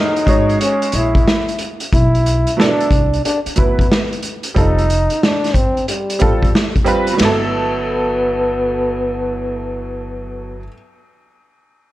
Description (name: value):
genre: hip hop, jazz-hop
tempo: 91 BPM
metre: 4/4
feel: swing 66% on 16ths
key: G major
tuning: A4 = 440 Hz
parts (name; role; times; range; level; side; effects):
- breathy trombone; melody; 0.0-10.6 s; G3 to E4; -19 LUFS; equal; none
- bright upright piano; accompaniment; 0.0-10.7 s; F#3 to C#5; -20 LUFS; right 2 dB; none
- vintage drum kit; drums; 0.2-7.4 s; hi-hat, kick drum, ride cymbal, snare drum; -17 LUFS; equal; none
- upright bass; bass; 0.3-10.7 s; F1 to D2; -21 LUFS; equal; none
room: light reverb, small room reverb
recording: dark, warm production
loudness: -14 LUFS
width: side -16 dB against mid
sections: 0.0-7.2 A section; 7.2-9.8 B section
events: none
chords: 0.0 F#7; 1.9 Bm; 4.6 F9; 7.2 Gmaj7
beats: 0.60 1.26 | 1.92 2.58 3.24 3.90 | 4.56 5.22 5.88 6.54 | 7.20 7.86 8.52 9.17